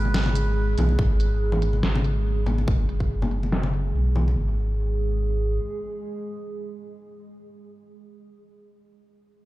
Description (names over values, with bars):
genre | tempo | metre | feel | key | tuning
deep dubstep | 142 BPM | 4/4 | swing 54% on 16ths, half-time | G# minor | A4 = 439 Hz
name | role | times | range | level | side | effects
melodica | melody | 0.0-0.7 s | B4 | -37 LUFS | right 2 dB | dub echo
dark analog pad | sustained chords | 0.0-8.6 s | G#3 to G#4 | -33 LUFS | right 2 dB | chorus, phaser
soft dub sub bass | bass | 0.0-5.6 s | F#1 to B1 | -23 LUFS | equal | none
dubstep drum kit | drums | 0.1-4.2 s | hi-hat, snare drum | -30 LUFS | equal | low-pass filter on hats, low-pass filter on snare, low-pass filter on cymbals, low-pass filter on toms
congas | percussion | 0.1-4.4 s | none | -30 LUFS | left 2 dB | dub echo
electronic kick drum | drums | 1.0-3.1 s | none | -23 LUFS | equal | none
room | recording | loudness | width
digital ambience | played on a big sound system in a bare room, large studio reverb | -22 LUFS | side -17 dB against mid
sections
0.0-4.4 A section; 4.4-7.7 B section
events
filter sweep on drum 0.0-4.4; filter sweep on sub bass 0.0-4.4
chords
0.0 G#m; 4.4 N.C.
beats
0.14 0.57 | 0.99 1.41 1.83 2.26 | 2.68 3.10 3.52 3.95 | 4.37 4.79 5.21 5.64 | 6.06 6.48 6.90 7.33